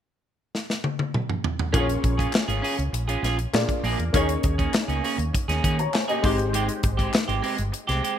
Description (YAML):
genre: polished 1980s jazz-funk pop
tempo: 100 BPM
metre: 4/4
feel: straight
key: unclear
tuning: A4 = 439 Hz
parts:
  - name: modern studio drum kit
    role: drums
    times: 0.5-8.2 s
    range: hi-hat, kick drum, snare drum, toms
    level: -25 LUFS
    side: equal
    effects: none
  - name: warm baby grand piano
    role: accompaniment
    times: 1.7-8.2 s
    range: Ab3 to Bb5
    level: -28 LUFS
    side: left 2 dB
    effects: ensemble chorus
  - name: electric guitar at the edge of break-up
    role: riff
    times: 1.7-8.2 s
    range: Ab3 to Ab4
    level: -28 LUFS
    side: right 4 dB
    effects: wide subtle chorus
  - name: fingered electric bass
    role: bass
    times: 1.7-8.0 s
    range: G1 to Eb3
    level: -26 LUFS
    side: equal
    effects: none
  - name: group handclap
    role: percussion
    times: 2.3-7.3 s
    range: none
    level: -37 LUFS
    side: left 6 dB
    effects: none
room: light reverb, small room ambience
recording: bright 1980s-style digital production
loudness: -22 LUFS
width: side -10 dB against mid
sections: 0.0-1.7 A section; 1.7-8.2 B section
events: drum fill 0.5-1.7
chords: 0.0 N.C.; 1.7 Bbm7; 3.5 Bb7; 4.1 Eb7sus4; 6.2 Abmaj7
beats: 0.53 1.13 | 1.73 2.33 2.93 3.54 | 4.13 4.74 5.34 5.94 | 6.54 7.14 7.74